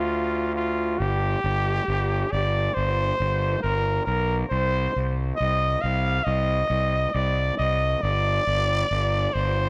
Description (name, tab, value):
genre	post-rock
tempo	68 BPM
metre	4/4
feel	straight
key	G minor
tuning	A4 = 439 Hz
part	growling trumpet	melody	0.0-9.7 s	F4 to F5	-27 LUFS	equal	slapback echo
part	fuzz fingered electric bass	bass	0.0-9.7 s	G1 to D2	-27 LUFS	equal	overdrive
room	moderate scoring stage reverb, RT60 2.0 s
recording	big arena sound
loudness	-24 LUFS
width	mono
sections	1.0-9.7 A section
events	none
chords	0.0 Dm; 1.0 Gmadd11; 4.5 Cm; 8.0 G5